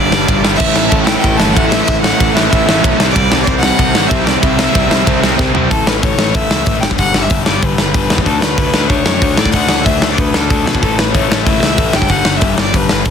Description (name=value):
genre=punk rock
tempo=188 BPM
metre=4/4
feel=straight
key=unclear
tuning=A4 = 436 Hz
part: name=rich violin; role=melody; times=0.0-13.1 s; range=A4 to A5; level=-18 LUFS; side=left 1 dB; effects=none
part: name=overdriven electric guitar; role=riff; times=0.0-5.7 s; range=G2 to E4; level=-20 LUFS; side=equal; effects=none
part: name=overdriven semi-hollow guitar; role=riff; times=0.0-13.1 s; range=G2 to D4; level=-18 LUFS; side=left 13 dB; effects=none
part: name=overdriven semi-hollow guitar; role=riff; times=0.0-5.7 s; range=G2 to D4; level=-18 LUFS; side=right 15 dB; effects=none
part: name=modern bright picked electric bass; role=bass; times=0.0-13.1 s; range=G1 to B2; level=-19 LUFS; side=right 1 dB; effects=none
part: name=big rock drum kit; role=drums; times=0.1-13.1 s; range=crash cymbal, hi-hat, kick drum, ride cymbal, snare drum, toms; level=-14 LUFS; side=equal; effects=none
room=little or no reverb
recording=dense, heavily limited modern master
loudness=-10 LUFS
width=side -7 dB against mid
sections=0.0-5.7 A section; 5.7-13.1 B section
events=drum fill 5.4-5.7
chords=0.0 G; 0.6 A; 3.0 C; 5.7 A; 6.8 G5; 8.3 D5; 10.8 A; 11.9 G5